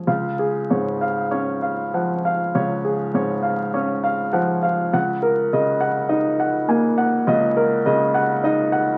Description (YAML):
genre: classical, romantic nocturne for solo piano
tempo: 51 BPM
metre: 4/4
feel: rubato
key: Db major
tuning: A4 = 440 Hz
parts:
  - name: warm baby grand piano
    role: solo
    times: 0.0-9.0 s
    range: Db2 to Ab5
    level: -21 LUFS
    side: equal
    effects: none
room: moderate studio reverb, RT60 0.8 s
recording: very old 78 rpm record, vinyl crackle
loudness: -21 LUFS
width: mono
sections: 0.1-9.0 A section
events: none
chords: 0.1 Db; 4.9 Ebm7/Db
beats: | 0.06 1.32 2.54 3.73 | 4.93 6.10 7.28 8.44